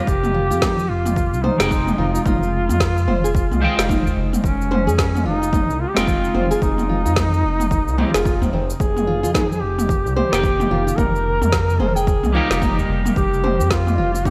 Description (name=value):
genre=organic downtempo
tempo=110 BPM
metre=4/4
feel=swing 59% on 16ths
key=F minor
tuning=A4 = 442 Hz
part: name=clean electric guitar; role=accompaniment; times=0.0-14.3 s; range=Eb3 to G5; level=-29 LUFS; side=equal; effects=analog chorus, sidechain pumping, digital delay
part: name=nylon-string guitar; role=arpeggios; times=0.0-14.3 s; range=C4 to G5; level=-28 LUFS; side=equal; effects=digital delay
part: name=mellow duduk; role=melody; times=0.1-14.3 s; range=Db4 to Bb4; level=-25 LUFS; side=equal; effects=digital delay
part: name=smooth synth bass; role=bass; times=0.1-14.3 s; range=F1 to F2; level=-24 LUFS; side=equal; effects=none
part: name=deep house drum kit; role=drums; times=0.1-14.3 s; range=cabasa, snare drum, toms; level=-26 LUFS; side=equal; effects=none
part: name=electronic kick drum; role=drums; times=0.1-14.3 s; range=none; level=-24 LUFS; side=equal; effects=none
part: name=udu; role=percussion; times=3.3-4.1, 7.7-8.5, 12.1-12.9 s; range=none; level=-27 LUFS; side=equal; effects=none
room=light reverb, digital ambience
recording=bright 1980s-style digital production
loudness=-19 LUFS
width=mono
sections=0.0-14.3 A section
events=none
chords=0.1 Fm7; 8.8 Eb/F